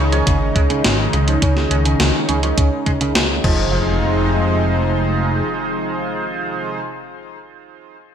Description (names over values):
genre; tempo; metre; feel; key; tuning
synthwave; 104 BPM; 4/4; straight; F minor; A4 = 445 Hz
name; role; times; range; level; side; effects
lush unison pad; sustained chords; 0.0-6.8 s; C3 to Eb4; -22 LUFS; left 1 dB; chorus, phaser, sidechain pumping
clean electric guitar; riff; 0.0-4.0 s; Db3 to Ab3; -25 LUFS; right 3 dB; lush chorus, low-pass filter, ping-pong delay
chorused polysynth; stabs; 0.0-6.8 s; Db4 to Db5; -24 LUFS; right 4 dB; phaser, cassette tape, ping-pong delay
chorused synth bass; bass; 0.0-5.4 s; F1 to Db2; -19 LUFS; equal; none
gated 80s digital drum machine; drums; 0.1-3.6 s; crash cymbal, hi-hat, snare drum; -21 LUFS; equal; gated reverb, gated reverb snare
electronic kick drum; drums; 0.3-3.6 s; none; -18 LUFS; equal; none
impact; sound effects; 3.6-6.9 s; none; -29 LUFS; left 1 dB; none
room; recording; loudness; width
moderate plate reverb, RT60 2.0 s; bright 1980s-style digital production; -15 LUFS; side -8 dB against mid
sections
0.0-3.7 A section; 3.7-6.0 B section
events
filter sweep on analog polysynth 0.0-3.7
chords
0.0 Dbsus2; 3.4 Fm7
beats
0.27 0.84 | 1.42 2.00 2.58 3.15 | 3.73 4.31 4.88 5.46